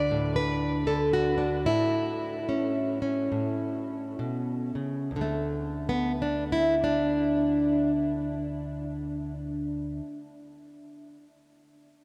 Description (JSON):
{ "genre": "acoustic country blues, solo or duo", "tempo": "64-79 BPM", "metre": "4/4", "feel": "swing 62% on 8ths", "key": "D major", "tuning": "A4 = 438 Hz", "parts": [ { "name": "fingerpicked plugged-in old ladder-braced acoustic guitar", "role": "solo", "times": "0.0-10.4 s", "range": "D2 to D5", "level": "-29 LUFS", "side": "equal", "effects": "none" } ], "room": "wet huge ambient reverb, RT60 7.8 s", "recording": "in a vast, echoing space", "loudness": "-28 LUFS", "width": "mono", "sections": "0.0-5.1 A section; 5.1-8.9 B section", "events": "slowing down 0.0-5.1", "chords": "0.0 D; 1.7 A; 5.1 D5", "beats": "0.11 0.88 | 1.67 2.48 3.32 4.19 | 5.11 6.05 6.98 7.92" }